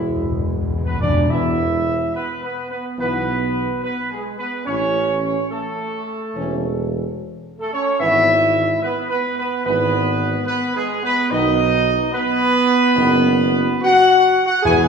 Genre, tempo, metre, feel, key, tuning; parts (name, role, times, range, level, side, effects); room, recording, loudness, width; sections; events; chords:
classical; 72 BPM; 4/4; straight; E major; A4 = 441 Hz
dark trumpet section; melody; 0.0-14.9 s; E4 to G#5; -19 LUFS; equal
bright trombone section; sustained chords; 0.0-14.9 s; B2 to G#4; -22 LUFS; right 2 dB
warm French horn section; sustained chords; 0.0-14.9 s; D#3 to C#4; -27 LUFS; left 2 dB
mellow tuba; bass; 0.0-14.9 s; E1 to E2; -24 LUFS; right 2 dB
timpani; percussion; 0.0-1.2, 14.7-14.9 s; E2; -22 LUFS; left 2 dB
wet recital hall reverb, RT60 1.7 s; recorded in a church or concert hall; -16 LUFS; side -6 dB against mid
0.0-1.3 A section; 1.3-14.9 B section
timpani fill 0.0-1.3
0.0 E; 1.3 E5; 4.7 A; 8.0 E/G#; 11.3 B